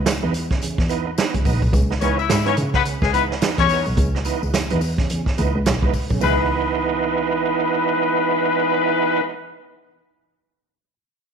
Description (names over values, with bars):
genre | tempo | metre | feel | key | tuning
funk | 107 BPM | 4/4 | swing 60% on 16ths | C# minor | A4 = 440 Hz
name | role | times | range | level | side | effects
dark double bass | bass | 0.0-9.2 s | A#1 to C#3 | -22 LUFS | equal | none
vintage drum kit | drums | 0.1-6.2 s | hi-hat, kick drum, snare drum | -22 LUFS | right 2 dB | none
tambourine | percussion | 0.1-6.5 s | none | -38 LUFS | left 14 dB | none
overdriven tonewheel organ | stabs | 0.2-9.2 s | C#3 to D#4 | -23 LUFS | right 8 dB | chorus vibrato, stopped rotary speaker, slapback echo
warm horn section | second line | 2.0-9.2 s | G#3 to E5 | -21 LUFS | left 11 dB | none
room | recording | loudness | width
light reverb, studio ambience | 1960s-style stereo with parts hard left and right | -17 LUFS | side -6 dB against mid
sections
0.0-6.2 A section; 6.2-8.5 B section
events
none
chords
0.0 C#m9